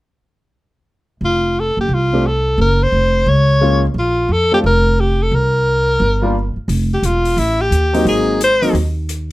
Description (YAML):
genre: jazz, small-group swing and bop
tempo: 175 BPM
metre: 4/4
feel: swing 64% on 8ths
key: unclear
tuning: A4 = 440 Hz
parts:
  - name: clear alto saxophone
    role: melody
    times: 1.2-8.7 s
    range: E4 to Db5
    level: -16 LUFS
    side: left 1 dB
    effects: none
  - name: upright bass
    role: bass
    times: 1.2-9.3 s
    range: E1 to F2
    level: -16 LUFS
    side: right 1 dB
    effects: none
  - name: warm concert grand piano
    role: accompaniment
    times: 2.1-8.7 s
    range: Gb3 to G4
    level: -18 LUFS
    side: equal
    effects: none
  - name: hi-hat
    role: drums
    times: 6.7-9.2 s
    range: none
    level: -30 LUFS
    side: left 5 dB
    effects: none
room: light reverb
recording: close, detailed microphones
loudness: -13 LUFS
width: side -18 dB against mid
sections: 1.2-6.7 A section; 6.7-9.3 B section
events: none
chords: 1.2 F; 2.6 Gbmaj7; 4.0 Bbmaj7(no3); 5.3 C7(no3); 6.7 Fmaj9; 8.1 Ab7